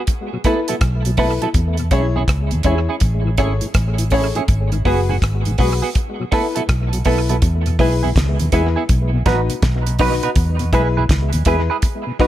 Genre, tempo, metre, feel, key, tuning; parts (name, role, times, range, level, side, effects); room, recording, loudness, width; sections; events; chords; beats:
roots reggae; 82 BPM; 4/4; swing 64% on 16ths; E major; A4 = 438 Hz
damped 70s drum kit; drums; 0.1-12.3 s; hi-hat, kick drum, rim click, snare drum; -19 LUFS; equal; analog delay
mellow tonewheel organ; accompaniment; 0.3-12.3 s; E2 to G#4; -26 LUFS; left 2 dB; chorus vibrato, slow rotary speaker, analog delay
warm baby grand piano; stabs; 0.4-12.3 s; D#4 to C#5; -24 LUFS; left 6 dB
clean electric guitar; accompaniment; 0.5-12.3 s; B3 to B4; -23 LUFS; right 7 dB; wide subtle chorus, tape echo
vintage muted fingered electric bass; bass; 0.8-11.7 s; F#1 to E2; -18 LUFS; equal
small room ambience; echo-heavy mix; -15 LUFS; side -13 dB against mid
0.0-7.4 A section; 7.4-12.3 B section
0.1 B7sus4; 1.5 E6; 3.0 Amaj7; 4.5 G#m7; 6.0 B7sus4; 7.4 E; 8.9 B; 10.4 E
0.08 0.81 | 1.55 2.28 3.02 3.75 | 4.49 5.22 5.95 6.69 | 7.42 8.16 8.89 9.62 | 10.36 11.09 11.83